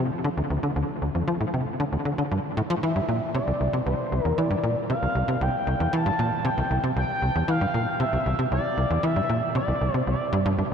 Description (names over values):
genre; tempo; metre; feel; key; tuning
ambient, sequencer-driven space music; 116 BPM; 4/4; straight; unclear; A4 = 440 Hz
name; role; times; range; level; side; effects
tight sequencer bass; riff; 0.0-10.7 s; C2 to F3; -24 LUFS; equal; analog chorus, analog delay
expressive portamento lead; melody; 2.8-10.6 s; C5 to A5; -27 LUFS; equal; analog chorus, analog delay
room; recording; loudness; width
wet huge ambient reverb, RT60 7.4 s; in a vast, echoing space; -23 LUFS; side -7 dB against mid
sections
0.0-10.7 A section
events
none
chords
0.0 Dm; 2.8 Csus2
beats
0.24 | 0.76 1.28 1.79 2.31 | 2.83 3.35 3.86 4.38 | 4.90 5.41 5.93 6.45 | 6.97 7.48 8.00 8.52 | 9.04 9.55 10.07 10.59